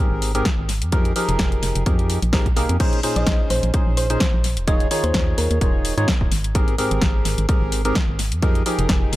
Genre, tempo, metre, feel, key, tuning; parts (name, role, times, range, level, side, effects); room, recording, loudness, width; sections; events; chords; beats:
piano house; 128 BPM; 4/4; swing 55% on 16ths; F minor; A4 = 441 Hz
percussive organ stab; riff; 0.0-9.2 s; Ab2 to Db5; -24 LUFS; equal; lush chorus, sidechain pumping, tape echo
organ-like FM bass; bass; 0.1-9.2 s; Eb1 to Ab2; -22 LUFS; equal; tube saturation, sidechain pumping
house drum kit; drums; 0.2-9.2 s; crash cymbal, hi-hat, snare drum; -25 LUFS; left 1 dB; tape echo
electronic kick drum; drums; 0.5-9.0 s; -20 LUFS; equal; overdrive
thumb-piano-like synth pluck; melody; 3.2-6.0 s; Bb4 to Eb5; -26 LUFS; right 1 dB; chorus, tape echo
little or no reverb; echo-heavy mix; -17 LUFS; side -16 dB against mid
0.0-9.2 A section
0.0 Abmaj9; 0.7 Fm11; 2.8 Bbm11; 4.7 Eb9sus4; 6.6 Abmaj9; 8.2 Fm11
0.46 | 0.93 1.40 1.86 2.33 | 2.80 3.27 3.74 4.21 | 4.68 5.14 5.61 6.08 | 6.55 7.02 7.49 7.96 | 8.43 8.89